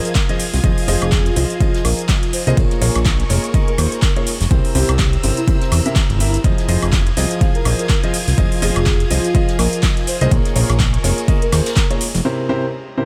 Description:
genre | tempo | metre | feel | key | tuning
piano house | 124 BPM | 4/4 | swing 58% on 16ths | F minor | A4 = 440 Hz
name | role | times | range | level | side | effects
muted studio string section | sustained chords | 0.0-12.2 s | Bb4 to Ab6 | -34 LUFS | equal | sidechain pumping
warm concert grand piano | riff | 0.0-13.1 s | C3 to F5 | -25 LUFS | equal | sidechain pumping
granular cloud pad | texture | 0.3-12.2 s | E4 to Bb5 | -33 LUFS | equal | none
breathy flute-like synth lead | melody | 0.1-11.9 s | E4 to C5 | -29 LUFS | equal | chorus, dub echo
house drum kit | drums | 0.1-12.2 s | cabasa, handclaps, hi-hat, woodblock | -26 LUFS | equal | none
electronic kick drum | drums | 0.2-11.9 s | none | -19 LUFS | equal | overdrive
soft brush drum kit | drums | 0.2-12.2 s | ride cymbal, snare drum | -36 LUFS | equal | none
fat analog bass | bass | 0.5-12.2 s | F1 to E2 | -20 LUFS | equal | sidechain pumping
room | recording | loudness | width
small room ambience | none | -17 LUFS | mono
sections
0.0-13.1 A section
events
break 12.3-13.1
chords
0.0 Fm7; 2.6 Bbm7; 4.5 C7; 6.4 Fm7; 10.3 Bbm7; 12.3 C7

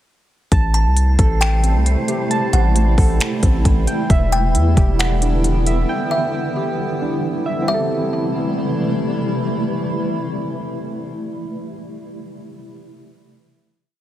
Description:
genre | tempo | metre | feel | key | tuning
hip hop, atmospheric cloud-rap | 134 BPM | 4/4 | half-time | A dorian | A4 = 440 Hz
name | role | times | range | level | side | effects
granular cloud pad | sustained chords | 1.1-11.1 s | C3 to E4 | -22 LUFS | equal | built-in reverb, sidechain pumping
soft electric-piano-like synth keys | arpeggios | 0.5-11.2 s | C4 to A5 | -26 LUFS | right 3 dB | chorus, tape echo
long sustained 808-style bass | bass | 0.5-5.8 s | E1 to E2 | -16 LUFS | equal | none
smooth R&B drum kit | drums | 0.5-5.8 s | finger snaps, hi-hat, kick drum | -17 LUFS | equal | overdrive
wind-like tuned noise texture | texture | 1.1-4.1 s | A3 to C5 | -31 LUFS | left 1 dB | built-in reverb
kalimba | melody | 0.7-9.0 s | E5 to A5 | -26 LUFS | left 1 dB | tape echo
room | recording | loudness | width
digital ambience | none | -16 LUFS | side -13 dB against mid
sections
0.5-7.7 verse; 7.7-11.3 final chord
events
none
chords
0.5 Am7; 4.1 Em7; 7.7 Am7

